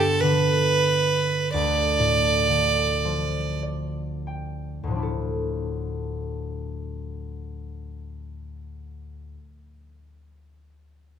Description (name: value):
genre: celtic folk, Celtic slow air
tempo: 30-47 BPM (dotted quarters)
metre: 6/8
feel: rubato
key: D dorian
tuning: A4 = 442 Hz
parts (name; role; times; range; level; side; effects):
- clear fiddle; melody; 0.0-3.6 s; A4 to D5; -21 LUFS; right 4 dB; none
- concert harp; accompaniment; 0.0-9.5 s; D2 to G5; -27 LUFS; left 1 dB; none
room: moderate recital hall reverb, RT60 1.6 s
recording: minimal, uncompressed stereo recording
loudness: -22 LUFS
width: side -8 dB against mid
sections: 0.0-4.9 A section; 4.9-8.7 B section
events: slowing down 0.0-4.9; harp fill 3.0-4.9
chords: 0.0 G; 1.5 Dm; 4.9 Dmadd9